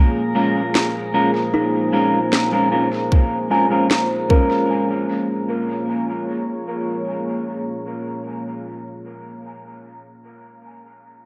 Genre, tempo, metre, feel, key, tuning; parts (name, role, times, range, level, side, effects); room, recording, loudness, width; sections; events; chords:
ambient dub; 76 BPM; 4/4; straight; Bb minor; A4 = 439 Hz
deep dark ambient pad; sustained chords; 0.0-8.6 s; Bb3 to Db5; -27 LUFS; equal; chorus, built-in reverb
drifting glass-harmonics texture; texture; 0.0-4.7 s; Bb3 to Bb4; -33 LUFS; equal
clean electric guitar; stabs; 0.3-8.9 s; Ab3 to Bb4; -24 LUFS; equal; low-pass filter, dub echo
electronic snare drum; drums; 0.8-4.1 s; -25 LUFS; equal; studio reverb, dub echo
kalimba; arpeggios; 1.5-8.9 s; Eb4 to Ab5; -28 LUFS; equal; low-pass filter, dub echo
electronic kick drum; drums; 3.1-4.5 s; -16 LUFS; equal; studio reverb
wet spring reverb, RT60 2.1 s; echo-heavy mix; -20 LUFS; mono
0.0-4.7 A section; 4.7-7.9 B section
0.0 Bbm7